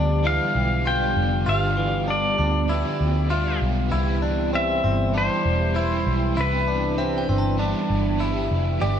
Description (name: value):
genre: dream pop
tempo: 98 BPM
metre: 4/4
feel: straight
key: unclear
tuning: A4 = 445 Hz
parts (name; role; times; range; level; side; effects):
- pedal steel guitar; melody; 0.0-8.2 s; B4 to G5; -25 LUFS; left 1 dB; ping-pong delay
- overdriven electric guitar; accompaniment; 0.0-9.0 s; G2 to G4; -30 LUFS; right 3 dB; tremolo, ensemble chorus
- warm analog pad; sustained chords; 0.0-9.0 s; D3 to G4; -27 LUFS; equal; chorus
- direct-recorded clean electric guitar; arpeggios; 0.0-9.0 s; E3 to G4; -28 LUFS; left 2 dB; lush chorus, ping-pong delay
- vintage muted picked electric bass; bass; 0.0-9.0 s; E1 to D2; -24 LUFS; equal; none
- glassy synth bell; texture; 0.0-9.0 s; D5 to A5; -37 LUFS; right 3 dB; chorus, phaser, ping-pong delay
room: moderate concert hall reverb, RT60 1.9 s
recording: none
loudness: -20 LUFS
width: side -8 dB against mid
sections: 0.0-8.8 A section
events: none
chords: 0.0 G7; 3.9 Cmaj7